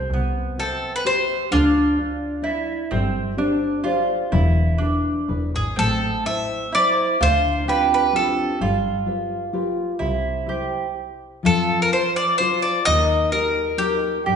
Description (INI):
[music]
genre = italian folk, Italian serenade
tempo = 128 BPM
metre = 3/4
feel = rubato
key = C major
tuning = A4 = 439 Hz
[part]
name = mandolin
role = second line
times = 0.0-14.4 s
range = B3 to G4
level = -24 LUFS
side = right 4 dB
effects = none
[part]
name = clear double bass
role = bass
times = 0.0-14.4 s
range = E1 to G2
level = -24 LUFS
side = equal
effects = none
[part]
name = nylon-string guitar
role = accompaniment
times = 0.1-14.4 s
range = C3 to F5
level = -25 LUFS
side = left 2 dB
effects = none
[part]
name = bowl-back mandolin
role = melody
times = 0.6-2.7, 5.6-8.6, 11.5-14.2 s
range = F4 to E5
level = -21 LUFS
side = left 1 dB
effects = none
[sound]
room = wet recital hall reverb, RT60 1.6 s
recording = recorded in a church or concert hall, nothing above 10.7 kHz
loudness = -18 LUFS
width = side -7 dB against mid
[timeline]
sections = 0.1-11.5 A section; 11.5-14.4 B section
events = stop 11.0-11.5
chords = 0.1 Cmaj7; 1.5 Dmadd9; 2.9 Gsus4; 4.3 E; 5.8 Am; 7.2 Dm7; 8.6 G7; 10.0 C; 11.5 F; 12.9 Eb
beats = | 0.10 0.57 1.04 | 1.51 1.98 2.44 | 2.91 3.38 3.85 | 4.33 4.80 5.29 | 5.78 6.26 6.74 | 7.21 7.68 8.14 | 8.61 9.07 9.54 | 10.01 10.48 10.96 | 11.45 11.93 12.40 | 12.87 13.34 13.81 | 14.28